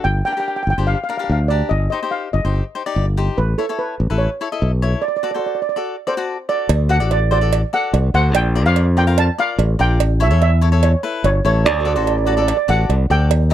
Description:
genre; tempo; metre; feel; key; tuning
calypso; 145 BPM; 4/4; straight; unclear; A4 = 441 Hz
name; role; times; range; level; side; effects
steel pan; melody; 0.0-13.5 s; A4 to A5; -20 LUFS; right 3 dB; none
cavaquinho; accompaniment; 0.0-13.5 s; D4 to F5; -24 LUFS; left 7 dB; none
modern bright fingered electric bass; bass; 0.0-13.5 s; G1 to F2; -16 LUFS; equal; none
cowbell; percussion; 6.7-13.4 s; none; -24 LUFS; right 16 dB; none
room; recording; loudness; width
little or no reverb; dry, close 1970s-style studio recording; -15 LUFS; side -11 dB against mid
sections
0.0-6.7 A section; 6.7-13.5 B section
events
break 5.0-6.7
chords
0.1 Gm; 1.7 Cm/G; 3.4 A; 5.0 D; 6.7 D7; 8.3 Bb; 10.0 A; 11.7 D7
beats
| 0.06 0.47 0.89 1.30 | 1.72 2.13 2.55 2.96 | 3.38 3.79 4.21 4.62 | 5.04 5.45 5.87 6.28 | 6.70 7.11 7.52 7.94 | 8.35 8.76 9.18 9.59 | 10.00 10.42 10.83 11.24 | 11.66 12.07 12.48 12.89 | 13.31

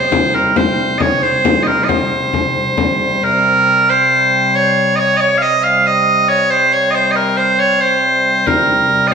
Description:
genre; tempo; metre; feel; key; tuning
medieval dance; 91 BPM (dotted quarters); 6/8; straight; C phrygian; A4 = 440 Hz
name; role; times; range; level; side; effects
loud bright bagpipes; melody; 0.0-9.1 s; Bb4 to F5; -12 LUFS; right 1 dB; none
hand-pumped harmonium; drone; 0.0-9.1 s; C3 to G3; -21 LUFS; left 1 dB; none
frame drum; percussion; 0.1-3.0, 8.5-8.7 s; none; -18 LUFS; left 4 dB; none
room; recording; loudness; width
wet recital hall reverb, RT60 1.7 s; recorded in a church or concert hall; -11 LUFS; side -6 dB against mid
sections
0.0-3.2 A section; 3.2-9.1 B section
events
none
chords
none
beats
| 0.56 1.22 | 1.88 2.54 | 3.20 3.86 | 4.52 5.18 | 5.83 6.49 | 7.15 7.81 | 8.46 9.12

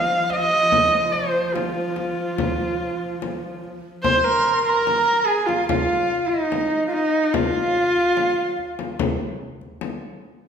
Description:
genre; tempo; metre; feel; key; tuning
mongolian traditional, Mongolian folk; 72 BPM; 4/4; straight; F yu mode; A4 = 441 Hz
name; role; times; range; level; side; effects
rich horsehead fiddle; melody; 0.0-9.0 s; Eb4 to F5; -20 LUFS; equal; none
warm horsehead fiddle; drone; 0.0-4.1 s; F3; -30 LUFS; right 2 dB; none
frame drum; percussion; 0.3-10.0 s; none; -28 LUFS; left 4 dB; none
large dizi; second line; 4.0-9.0 s; Eb5 to C6; -23 LUFS; right 4 dB; none
room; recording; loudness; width
wet recital hall reverb, RT60 1.5 s; recorded in a church or concert hall; -18 LUFS; side -7 dB against mid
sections
0.0-4.0 A section; 4.0-10.5 B section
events
none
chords
none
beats
| 0.72 1.55 2.38 3.21 | 4.04 4.87 5.69 6.52 | 7.34 8.17 9.00 9.82

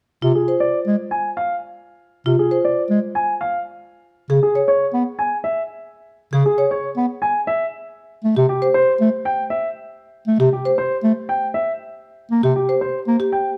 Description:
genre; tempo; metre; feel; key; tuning
classical, minimalist pattern music; 118 BPM; 4/4; straight; unclear; A4 = 439 Hz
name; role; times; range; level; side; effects
mellow bass clarinet; accompaniment; 0.2-13.2 s; C3 to Cb4; -22 LUFS; equal; none
marimba with medium mallets; arpeggios; 0.2-13.4 s; F4 to Db5; -24 LUFS; equal; none
dark baby grand piano; melody; 0.4-13.5 s; G4 to Ab5; -23 LUFS; equal; none
room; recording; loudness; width
moderate stone room reverb, RT60 1.4 s; close, detailed microphones; -19 LUFS; mono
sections
0.0-13.6 A section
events
none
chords
0.0 Fm; 3.9 Db7(no3); 8.0 Am7; 12.1 C7(no3)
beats
0.36 0.87 1.38 | 1.88 2.39 2.90 3.41 | 3.92 4.42 4.93 5.44 | 5.95 6.46 6.97 7.48 | 7.99 8.49 9.00 9.51 | 10.02 10.53 11.04 11.54 | 12.05 12.56 13.07

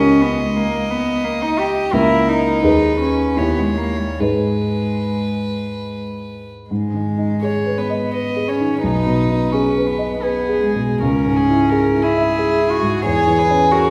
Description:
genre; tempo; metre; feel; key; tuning
classical, slow romantic movement for piano trio; 70-92 BPM; 3/4; rubato; G# minor; A4 = 441 Hz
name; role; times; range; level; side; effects
rich violin; melody; 0.0-13.9 s; G#4 to Eb5; -28 LUFS; equal; none
clear cello; second line; 0.0-13.9 s; G3 to G#4; -21 LUFS; equal; none
dark grand piano; accompaniment; 0.0-13.9 s; B1 to E5; -21 LUFS; equal; none
room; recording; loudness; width
wet recital hall reverb, RT60 1.4 s; recorded in a church or concert hall; -18 LUFS; mono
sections
0.0-6.7 A section; 6.7-13.9 B section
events
none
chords
0.0 Eb7/Db; 1.9 A#dim/C#; 2.6 G#m/D#; 3.4 D#7b9; 4.2 G#m; 8.8 G#m/B; 11.0 C#m; 13.1 C#m/E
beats
0.58 1.26 | 1.95 2.64 3.38 | 4.20 5.05 5.90 | 6.70 7.42 8.14 | 8.83 9.52 10.22 | 11.00 11.70 12.37 | 13.05 13.72

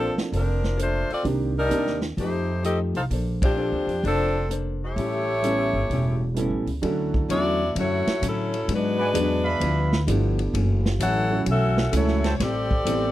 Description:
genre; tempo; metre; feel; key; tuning
jazz, big band swing; 129 BPM; 4/4; swing 67% on 8ths; Bb major, D major from 6.8 s; A4 = 443 Hz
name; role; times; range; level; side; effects
bright saxophone section; melody; 0.0-13.1 s; F3 to F#5; -25 LUFS; left 1 dB; none
archtop guitar, miked and amplified; accompaniment; 0.0-13.1 s; F#2 to C5; -30 LUFS; left 4 dB; none
warm grand piano; accompaniment; 0.0-2.0, 5.4-13.1 s; Eb3 to A4; -28 LUFS; right 4 dB; none
upright bass; bass; 0.0-13.1 s; E1 to A2; -26 LUFS; equal; none
vintage drum kit; drums; 0.2-13.0 s; hi-hat, kick drum, ride cymbal, snare drum; -29 LUFS; equal; none
mellow trumpet section; stabs; 9.0-12.3 s; B4 to B5; -27 LUFS; right 2 dB; none
room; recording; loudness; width
little or no reverb; dry, close 1970s-style studio recording; -21 LUFS; side -14 dB against mid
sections
0.0-6.8 A section; 6.8-13.1 B section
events
band accent 3.3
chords
0.0 Bbmaj9; 1.2 Cm9; 2.2 F9; 3.1 Bbmaj9; 5.0 A7; 6.8 Dmaj9; 8.7 G#m7b5; 9.6 G13; 10.5 F#m7; 12.4 Am7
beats
0.32 0.78 | 1.25 1.71 2.18 2.64 | 3.11 3.57 4.04 4.50 | 4.96 5.43 5.89 6.36 | 6.83 7.29 7.75 8.22 | 8.68 9.15 9.61 10.07 | 10.54 11.00 11.47 11.93 | 12.39 12.86

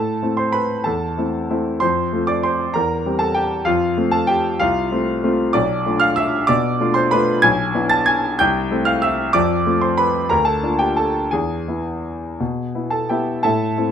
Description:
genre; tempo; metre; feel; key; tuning
classical, piano waltz; 164-206 BPM; 3/4; rubato; unclear; A4 = 438 Hz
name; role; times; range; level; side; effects
clear grand piano; solo; 0.0-13.9 s; B1 to A6; -16 LUFS; equal; none
room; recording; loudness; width
light reverb; close, detailed microphones; -16 LUFS; side -8 dB against mid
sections
0.0-13.4 A section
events
none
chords
0.0 Am; 1.8 F; 2.8 C7/E; 3.7 F; 5.6 Bm7b5; 7.4 E7/B; 8.4 Am/C; 9.4 F; 10.3 Bb/D; 11.3 E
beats
0.23 0.55 | 0.86 1.18 1.50 | 1.82 2.13 2.45 | 2.76 3.06 3.38 | 3.68 3.98 4.30 | 4.61 4.92 5.24 | 5.55 5.87 6.19 | 6.49 6.80 7.13 | 7.44 7.75 8.08 | 8.40 8.72 9.04 | 9.36 9.67 10.00 | 10.31 10.63 10.97 | 11.32 11.68 12.05 | 12.40 12.74 13.09 | 13.44 13.77

